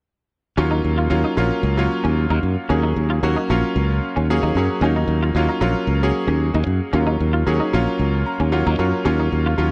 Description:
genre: jazz.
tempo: 113 BPM.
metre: 4/4.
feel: swing 53% on 16ths.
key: Eb minor.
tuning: A4 = 440 Hz.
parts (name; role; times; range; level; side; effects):
bright concert grand piano; accompaniment; 0.6-9.7 s; Gb3 to Bb5; -24 LUFS; equal; none.
semi-hollow electric guitar; stabs; 0.6-9.7 s; Db4 to F4; -29 LUFS; equal; ensemble chorus.
modern bright fingered electric bass; bass; 0.6-9.7 s; Bb1 to Gb2; -22 LUFS; equal; none.
room: small room reverb.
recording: dry, close 1970s-style studio recording.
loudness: -20 LUFS.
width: mono.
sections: 0.6-9.7 A section.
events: grand piano fill 4.0-4.8, 8.0-9.1.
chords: 0.6 Ebm9.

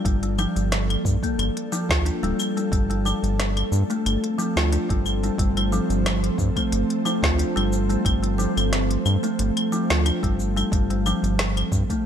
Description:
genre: organic downtempo.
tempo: 90 BPM.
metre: 4/4.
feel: swing 53% on 16ths.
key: unclear.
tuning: A4 = 441 Hz.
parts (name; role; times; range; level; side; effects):
ethereal airy pad; sustained chords; 0.0-12.1 s; F3 to D5; -28 LUFS; right 1 dB; ensemble chorus, built-in reverb, sidechain pumping, shimmer reverb.
round analog bass; bass; 0.0-11.8 s; D1 to G2; -24 LUFS; equal; none.
electronic kick drum; drums; 0.0-12.0 s; none; -25 LUFS; equal; none.
kalimba; arpeggios; 0.1-12.0 s; F3 to F4; -25 LUFS; left 1 dB; ping-pong delay, shimmer reverb.
afro-pop drum kit; drums; 0.1-12.0 s; claves, hi-hat, shaker, snare drum; -27 LUFS; left 1 dB; none.
room: light reverb.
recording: none.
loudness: -20 LUFS.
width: side -8 dB against mid.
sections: 0.0-12.1 A section.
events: none.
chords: 0.0 Gm7; 2.7 F/G.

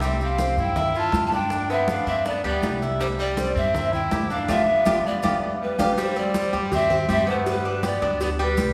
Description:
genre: latin, Cuban son and guajira.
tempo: 161 BPM.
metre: 4/4.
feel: straight.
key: C major.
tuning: A4 = 440 Hz.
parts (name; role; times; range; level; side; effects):
breathy reedy pan flute; melody; 0.0-8.7 s; B4 to A5; -27 LUFS; equal; none.
brilliant trumpet; second line; 0.0-8.7 s; G3 to F4; -33 LUFS; equal; none.
Cuban tres; arpeggios; 0.0-8.7 s; G3 to G4; -29 LUFS; equal; none.
upright bass; bass; 0.0-8.7 s; G1 to G2; -32 LUFS; equal; none.
bongos and cowbell; percussion; 0.0-8.7 s; none; -35 LUFS; equal; none.
congas; percussion; 0.0-8.7 s; none; -32 LUFS; equal; none.
maracas; percussion; 0.0-8.7 s; none; -46 LUFS; equal; none.
room: wet concert hall reverb, RT60 1.9 s.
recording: recorded in a church or concert hall.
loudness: -23 LUFS.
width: mono.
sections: 0.0-6.0 A section; 6.0-8.7 B section.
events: drum fill 4.5-6.0; band accent 4.5-6.0.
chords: 0.0 C; 1.5 G; 3.0 C; 4.5 G7; 6.0 C; 7.5 G.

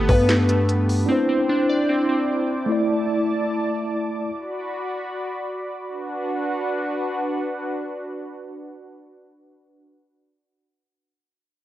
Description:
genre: hip hop, trap.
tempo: 150 BPM.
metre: 4/4.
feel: half-time.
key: B phrygian.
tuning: A4 = 440 Hz.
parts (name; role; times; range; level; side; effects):
mellow tine electric piano; accompaniment; 0.0-4.3 s; A3 to D5; -23 LUFS; equal; medium stereo tremolo, low-pass filter.
warm analog pad; sustained chords; 0.0-9.8 s; D4 to D6; -27 LUFS; equal; wide subtle chorus.
glassy digital keys; arpeggios; 0.0-2.7 s; A3 to D5; -22 LUFS; left 1 dB; chorus, low-pass filter, ping-pong delay.
growling 808-style bass; bass; 0.0-1.1 s; G2; -20 LUFS; equal; none.
trap drum kit; drums; 0.1-1.0 s; handclaps, hi-hat, kick drum, snare drum; -22 LUFS; equal; none.
room: light reverb, digital ambience.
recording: worn, warbling old tape, cassette tape, warbly pitch drift.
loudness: -21 LUFS.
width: side -14 dB against mid.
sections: 0.0-5.9 A section; 5.9-9.1 B section.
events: none.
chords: 0.0 Gadd9; 1.1 Cadd9; 2.7 Asus4; 4.3 Bm.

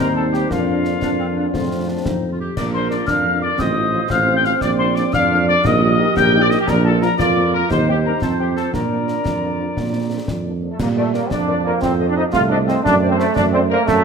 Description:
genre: military-style march for wind band.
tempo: 117 BPM (dotted quarters).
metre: 6/8.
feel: straight.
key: Bb major.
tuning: A4 = 441 Hz.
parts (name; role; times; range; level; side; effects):
mellow trumpet section; melody; 0.0-14.0 s; F4 to G5; -23 LUFS; left 2 dB; none.
mellow wooden piccolo; second line; 0.0-10.2 s; F5 to G6; -23 LUFS; left 5 dB; none.
warm euphonium; second line; 0.0-14.0 s; F3 to G4; -24 LUFS; right 5 dB; none.
warm woodwind section; second line; 0.0-13.8 s; C4 to Eb5; -27 LUFS; left 3 dB; none.
mellow French horn section; accompaniment; 0.0-13.8 s; F3 to Eb5; -26 LUFS; left 6 dB; none.
mellow tuba; bass; 0.0-14.0 s; A1 to Bb2; -20 LUFS; right 4 dB; none.
concert snare drum, concert bass drum and clash cymbals; drums; 0.3-14.0 s; none; -27 LUFS; left 2 dB; none.
clear trombone section; sustained chords; 10.7-14.0 s; A3 to F4; -18 LUFS; right 2 dB; none.
room: moderate scoring stage reverb, RT60 1.4 s.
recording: none.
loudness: -15 LUFS.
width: side -6 dB against mid.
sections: 0.0-10.8 A section; 10.8-14.0 A section.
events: none.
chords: 0.0 Cm/Eb; 0.5 Bb/F; 1.5 F; 2.6 Bb; 3.6 F7/A; 4.6 Bb; 5.7 Eb/Bb; 6.7 Bb; 7.7 Cm/Eb; 8.2 F5; 8.7 Bb; 11.8 F7; 12.8 D7/F#.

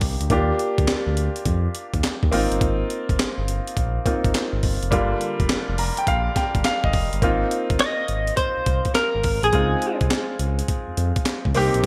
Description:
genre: R&B, new jack swing.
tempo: 104 BPM.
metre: 4/4.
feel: swing 66% on 16ths.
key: unclear.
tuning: A4 = 440 Hz.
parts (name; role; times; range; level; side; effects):
clear concert grand piano; accompaniment; 0.0-11.9 s; D3 to Bb5; -27 LUFS; equal; none.
smooth gliding synth bass; bass; 0.0-11.9 s; F1 to F2; -27 LUFS; equal; none.
breakbeat sampler-style drum kit; drums; 0.0-11.9 s; handclaps, hi-hat, kick drum, snare drum; -26 LUFS; equal; gated reverb.
direct-recorded clean electric guitar; melody; 7.8-10.0 s; Ab4 to Eb5; -25 LUFS; equal; lush chorus, digital delay.
room: moderate plate reverb, RT60 1.5 s.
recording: bright 1980s-style digital production.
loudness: -22 LUFS.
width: mono.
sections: 0.0-7.2 A section; 7.2-11.9 B section.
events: grand piano fill 5.5-7.2.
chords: 0.3 Ebmaj7; 2.3 Ab6; 4.9 Gm7; 7.2 Ab6; 9.5 Dbmaj7.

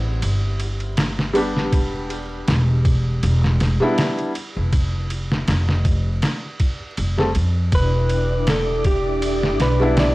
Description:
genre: trip hop.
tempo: 80 BPM.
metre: 4/4.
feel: swing 55% on 16ths.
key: E phrygian.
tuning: A4 = 440 Hz.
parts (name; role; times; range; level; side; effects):
felt-muted upright piano; accompaniment; 0.0-10.1 s; G3 to A4; -24 LUFS; equal; tremolo, tape echo.
upright bass; bass; 0.0-10.1 s; E1 to F2; -20 LUFS; equal; none.
trip hop sampler-style drum kit; drums; 0.2-10.1 s; kick drum, ride cymbal, snare drum; -22 LUFS; equal; small room ambience.
electric slide guitar; melody; 7.7-10.1 s; G4 to D5; -22 LUFS; equal; none.
string machine, cellos; sustained chords; 7.7-10.1 s; D5 to D6; -26 LUFS; equal; ensemble chorus, vintage 12-bit sampler grit.
room: little or no reverb.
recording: dry, gritty hardware recording, transformer saturation, vinyl crackle.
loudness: -18 LUFS.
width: side -19 dB against mid.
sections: 0.0-10.1 A section.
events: none.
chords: 0.0 Am7 (rootless); 1.7 Em7; 4.7 N.C.; 7.7 Em7.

